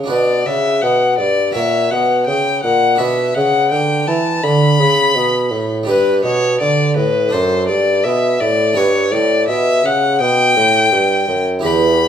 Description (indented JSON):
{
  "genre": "classical, baroque-style sonata movement with continuo",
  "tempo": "83 BPM",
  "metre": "4/4",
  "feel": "straight",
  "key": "B minor",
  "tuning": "A4 = 440 Hz",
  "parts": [
    { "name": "harpsichord", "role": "accompaniment", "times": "0.0-12.1 s", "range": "E2 to C#5", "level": "-20 LUFS", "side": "right 1 dB", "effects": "none" },
    { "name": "mellow bassoon", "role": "bass", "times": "0.0-12.1 s", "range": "E2 to E3", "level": "-17 LUFS", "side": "right 2 dB", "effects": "none" },
    { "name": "rich violin", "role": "melody", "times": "0.1-12.1 s", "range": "B4 to B5", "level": "-15 LUFS", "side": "left 4 dB", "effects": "none" }
  ],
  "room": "moderate large studio reverb, RT60 1.2 s",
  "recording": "minimal, uncompressed stereo recording",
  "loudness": "-12 LUFS",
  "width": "side -8 dB against mid",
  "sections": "0.1-12.1 A section",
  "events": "none",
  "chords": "0.1 Bm; 1.6 F#/A#; 3.0 Bm; 5.9 G; 7.3 D/F#; 8.8 G"
}